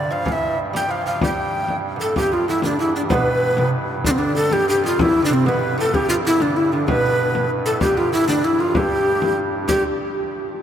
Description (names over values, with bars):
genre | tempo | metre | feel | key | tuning
medieval dance | 127 BPM (dotted quarters) | 6/8 | straight | G mixolydian | A4 = 439 Hz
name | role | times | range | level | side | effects
breathy mellow tenor recorder | melody | 0.0-9.8 s | C4 to G5 | -19 LUFS | equal | none
lute | second line | 0.0-9.8 s | D2 to G3 | -26 LUFS | right 3 dB | tape echo
chamber organ, soft reed | drone | 0.0-9.7 s | G2 | -29 LUFS | right 3 dB | none
frame drum | percussion | 0.1-9.8 s | none | -26 LUFS | left 2 dB | none
mellow tenor recorder | second line | 2.0-9.7 s | C4 to B4 | -27 LUFS | left 4 dB | none
room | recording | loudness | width
wet cathedral reverb, RT60 7.2 s | in a vast, echoing space | -17 LUFS | side -9 dB against mid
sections
0.0-2.2 A section; 2.2-9.7 B section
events
none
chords
none